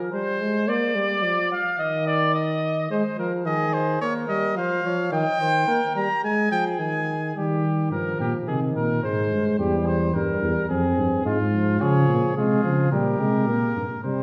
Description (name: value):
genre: classical, imitative canzona for brass ensemble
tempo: 108 BPM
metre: 4/4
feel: straight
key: Ab major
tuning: A4 = 445 Hz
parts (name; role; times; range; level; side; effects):
- warm euphonium; accompaniment; 0.0-14.2 s; Eb3 to C4; -27 LUFS; equal; none
- warm trumpet; second line; 0.1-14.2 s; F4 to F5; -29 LUFS; equal; none
- warm trumpet; melody; 3.5-7.3, 11.8-14.2 s; Ab4 to Bb5; -28 LUFS; equal; none
- mellow tuba; bass; 7.4-14.2 s; E2 to Eb3; -26 LUFS; equal; none
room: wet recital hall reverb, RT60 1.6 s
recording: recorded in a church or concert hall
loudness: -23 LUFS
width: mono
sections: 0.0-7.4 A section; 7.4-14.2 B section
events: none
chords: 0.0 Fm; 0.7 Bb; 1.8 N.C.; 2.9 Ab; 4.0 Bbm; 5.1 Eb; 6.2 Ab5; 7.4 Eb; 8.5 Ab; 9.6 C/E; 10.7 Fm; 11.8 Db; 12.9 Gmadd11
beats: 0.13 | 0.69 1.24 1.79 2.35 | 2.91 3.46 4.01 4.57 | 5.13 5.68 6.24 6.80 | 7.36 7.92 8.48 9.04 | 9.59 10.14 10.70 11.25 | 11.81 12.36 12.92 13.48 | 14.04